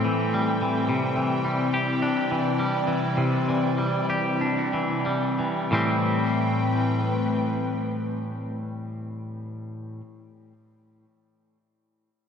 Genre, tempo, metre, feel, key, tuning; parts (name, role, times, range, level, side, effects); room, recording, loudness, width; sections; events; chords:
rock; 86-108 BPM; 4/4; straight; A minor; A4 = 439 Hz
airy breathy pad; sustained chords; 0.0-9.3 s; A2 to G5; -27 LUFS; left 1 dB; chorus
twangy electric guitar; arpeggios; 0.0-10.0 s; A2 to G4; -25 LUFS; equal; tape echo
wet lush hall reverb, RT60 1.7 s, small room ambience; dreamy mix soaked in reverb; -22 LUFS; side -7 dB against mid
0.0-5.7 A section; 5.7-8.5 B section
slowing down 0.9-5.7
0.0 Am7; 0.9 Cadd9; 5.7 Am7